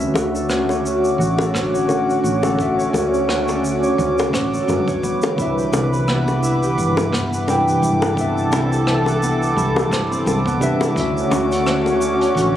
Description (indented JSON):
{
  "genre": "sunset chillout",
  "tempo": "86 BPM",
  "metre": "4/4",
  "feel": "swing 56% on 16ths",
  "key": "D major",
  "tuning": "A4 = 440 Hz",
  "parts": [
    { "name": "bright tine electric piano", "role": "accompaniment", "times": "0.0-12.6 s", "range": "C3 to G5", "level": "-22 LUFS", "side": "equal", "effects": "medium stereo tremolo, auto-pan, digital delay" },
    { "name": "lush unison pad", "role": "sustained chords", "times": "0.0-12.6 s", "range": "D3 to B4", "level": "-22 LUFS", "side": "equal", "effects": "chorus, shimmer reverb" },
    { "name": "Celtic harp", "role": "arpeggios", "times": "0.0-12.6 s", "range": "B3 to C#5", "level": "-24 LUFS", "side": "equal", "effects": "low-pass filter, digital delay, shimmer reverb" },
    { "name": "woody fretless electric bass", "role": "bass", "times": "0.0-12.6 s", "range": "G1 to F#2", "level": "-24 LUFS", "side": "equal", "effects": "lush chorus" },
    { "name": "vintage brush drum kit", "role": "drums", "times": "0.0-12.5 s", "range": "hi-hat, rim click, shaker", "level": "-28 LUFS", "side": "equal", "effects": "none" },
    { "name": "drifting glass-harmonics texture", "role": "texture", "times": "0.3-12.6 s", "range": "D6", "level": "-29 LUFS", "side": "right 3 dB", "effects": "chorus, built-in reverb, shimmer reverb" },
    { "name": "bongos", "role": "percussion", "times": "0.2-12.0 s", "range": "none", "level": "-23 LUFS", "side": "left 3 dB", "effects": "none" },
    { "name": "electronic kick drum", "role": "drums", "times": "1.5-11.1 s", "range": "none", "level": "-30 LUFS", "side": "equal", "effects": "none" }
  ],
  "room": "moderate plate reverb, RT60 3.0 s",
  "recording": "recorded on a phone in the room, club reverb, compression",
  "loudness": "-16 LUFS",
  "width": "side -11 dB against mid",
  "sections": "0.0-12.6 A section",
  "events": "none",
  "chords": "0.0 Dmaj7; 5.0 Cmaj7; 11.0 Dmaj7",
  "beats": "0.50 1.20 1.89 | 2.59 3.29 3.99 4.68 | 5.38 6.08 6.78 7.47 | 8.17 8.87 9.57 10.27 | 10.96 11.66 12.36"
}